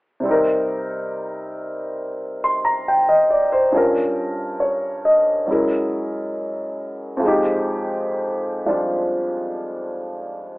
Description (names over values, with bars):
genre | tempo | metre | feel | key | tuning
jazz | 69 BPM | 4/4 | swing 68% on 8ths | C minor | A4 = 440 Hz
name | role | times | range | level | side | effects
warm grand piano | accompaniment | 0.2-10.6 s | F2 to C6 | -19 LUFS | equal | none
room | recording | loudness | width
moderate studio reverb, RT60 0.8 s | telephone sound | -18 LUFS | side -21 dB against mid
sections
0.3-10.6 A section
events
none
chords
0.3 Cm7; 3.7 Gm7b5; 5.5 F#9; 7.2 Fm9